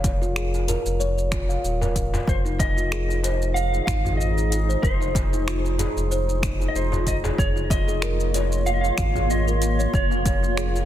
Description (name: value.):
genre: organic downtempo.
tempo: 94 BPM.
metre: 4/4.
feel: swing 54% on 16ths.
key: F minor.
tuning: A4 = 444 Hz.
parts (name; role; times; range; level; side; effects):
kalimba; arpeggios; 0.0-10.7 s; Eb4 to F5; -28 LUFS; left 1 dB; low-pass filter, digital delay.
warm sub bass; bass; 0.0-10.9 s; Eb1 to Ab1; -24 LUFS; equal; none.
electronic kick drum; drums; 0.0-10.4 s; none; -25 LUFS; equal; overdrive.
organic electronic drum kit; drums; 0.0-10.9 s; finger snaps, hi-hat, shaker; -31 LUFS; equal; overdrive, soft clipping on snare.
darbuka; percussion; 0.0-10.9 s; none; -34 LUFS; left 1 dB; none.
electric slide guitar; melody; 2.3-10.9 s; C5 to F5; -28 LUFS; right 1 dB; digital delay.
granular cloud pad; sustained chords; 3.1-10.9 s; Bb3 to C6; -31 LUFS; equal; built-in reverb, sidechain pumping.
room: digital ambience.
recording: dense, heavily limited modern master.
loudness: -20 LUFS.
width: side -12 dB against mid.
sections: 0.0-10.9 A section.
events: none.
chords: 0.0 N.C.; 2.3 Fm7; 7.4 Bbm7/F.